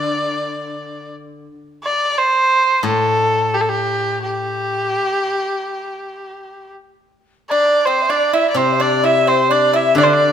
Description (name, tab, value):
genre	chinese traditional, Chinese chamber ensemble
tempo	86 BPM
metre	4/4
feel	rubato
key	unclear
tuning	A4 = 442 Hz
part	rich erhu	melody	0.0-10.3 s	G4 to E5	-17 LUFS	equal	none
part	steel-string zither	accompaniment	0.0-10.3 s	A2 to D3	-22 LUFS	left 4 dB	none
part	mellow xiao	second line	7.5-10.3 s	C5 to E5	-18 LUFS	equal	none
part	pipa	second line	7.5-10.3 s	C4 to E4	-20 LUFS	right 6 dB	none
room	moderate recital hall reverb, RT60 1.4 s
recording	minimal, uncompressed stereo recording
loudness	-14 LUFS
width	side -8 dB against mid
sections	0.0-7.1 A section; 7.1-10.3 B section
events	none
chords	none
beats	0.07 0.76 | 1.46 2.15 2.84 3.53 | 4.23 4.93 5.65 6.39 | 7.13 7.86 8.57 9.27 | 9.97